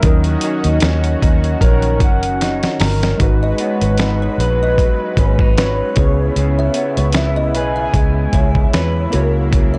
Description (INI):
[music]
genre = indie pop, bedroom pop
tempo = 76 BPM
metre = 4/4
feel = swing 55% on 16ths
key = G# minor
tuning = A4 = 441 Hz
[part]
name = soft octave-layered synth lead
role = melody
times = 0.0-9.1 s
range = B4 to G#5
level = -25 LUFS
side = equal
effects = subtle chorus
[part]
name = electric guitar through a small old amp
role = accompaniment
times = 0.0-9.8 s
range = G#2 to B4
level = -25 LUFS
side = equal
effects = lush chorus, warbly pitch drift
[part]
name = warbly lo-fi synth keys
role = accompaniment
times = 0.0-9.8 s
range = F#3 to C#5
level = -28 LUFS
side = equal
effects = chorus
[part]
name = lush unison pad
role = sustained chords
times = 0.0-9.8 s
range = C#3 to B4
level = -30 LUFS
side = equal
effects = chorus
[part]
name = vintage muted fingered electric bass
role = bass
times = 0.0-9.8 s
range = F#1 to E2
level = -20 LUFS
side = equal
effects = none
[part]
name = dusty soul sampler-style drum kit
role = drums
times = 0.0-9.7 s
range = hi-hat, kick drum, snare drum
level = -18 LUFS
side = equal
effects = vintage 12-bit sampler grit
[part]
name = kalimba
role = second line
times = 3.4-9.8 s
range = A#4 to E5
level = -27 LUFS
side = equal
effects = ensemble chorus, tape echo
[sound]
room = little or no reverb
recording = dry, gritty hardware recording, transformer saturation, nothing above 10.8 kHz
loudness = -16 LUFS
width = mono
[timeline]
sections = 0.0-3.2 A section; 3.2-9.8 B section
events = drum fill 2.4-3.2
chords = 0.0 D#m7; 3.2 G#m7; 6.0 C#m7; 9.1 F#7/C#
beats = | 0.04 0.83 1.62 2.41 | 3.20 3.99 4.78 5.58 | 6.37 7.16 7.95 8.74 | 9.53